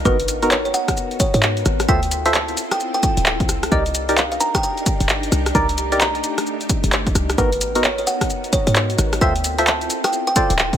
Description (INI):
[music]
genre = UK garage, two-step garage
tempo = 131 BPM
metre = 4/4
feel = swing 62% on 16ths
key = unclear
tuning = A4 = 440 Hz
[part]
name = soft string machine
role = sustained chords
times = 0.0-10.8 s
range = A3 to Bb4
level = -28 LUFS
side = left 1 dB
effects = ensemble chorus, sidechain pumping
[part]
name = short 808-style bass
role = bass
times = 0.0-10.8 s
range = D1 to Ab2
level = -22 LUFS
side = equal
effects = tube saturation
[part]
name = kalimba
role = melody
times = 0.1-10.5 s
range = Cb5 to Bb5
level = -23 LUFS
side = right 1 dB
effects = digital delay
[part]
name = percussive organ stab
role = stabs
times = 0.1-10.5 s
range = Cb4 to E5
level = -22 LUFS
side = equal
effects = chorus, digital delay
[part]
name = electronic kick drum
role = drums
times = 0.1-10.8 s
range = none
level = -21 LUFS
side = equal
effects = none
[part]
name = punchy analog drum machine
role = drums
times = 0.1-10.8 s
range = handclaps, hi-hat, rim click, shaker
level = -21 LUFS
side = equal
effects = none
[sound]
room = light reverb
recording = none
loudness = -16 LUFS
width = side -10 dB against mid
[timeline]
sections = 0.0-10.8 A section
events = none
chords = 0.1 Abm9; 1.9 Dm9; 3.7 Cm9; 7.4 Abm9; 9.2 Dm9